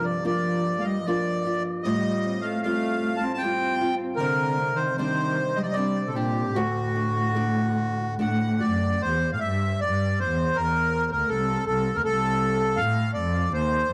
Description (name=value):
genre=celtic folk, Celtic slow air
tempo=71-82 BPM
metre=3/4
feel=rubato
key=unclear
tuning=A4 = 440 Hz
part: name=accordion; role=melody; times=0.0-13.9 s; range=F#4 to A5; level=-28 LUFS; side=equal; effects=analog delay
part: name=dark cello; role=second line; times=0.0-13.9 s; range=C2 to C4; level=-29 LUFS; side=equal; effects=none
part: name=nylon-string guitar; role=accompaniment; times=0.0-9.1 s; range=D2 to F#4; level=-31 LUFS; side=equal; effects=none
room=moderate spring reverb, RT60 2.1 s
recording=dry, gritty hardware recording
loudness=-25 LUFS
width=mono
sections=0.0-9.0 A section; 9.0-13.9 B section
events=none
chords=0.0 Gm7; 1.9 Fadd9/A; 4.2 Csus2; 6.6 D; 9.0 N.C.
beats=0.25 1.07 | 1.88 2.65 3.43 | 4.21 4.99 5.77 | 6.56 7.37 8.19 | 9.01 9.79 10.54 | 11.28 12.02 12.76 | 13.51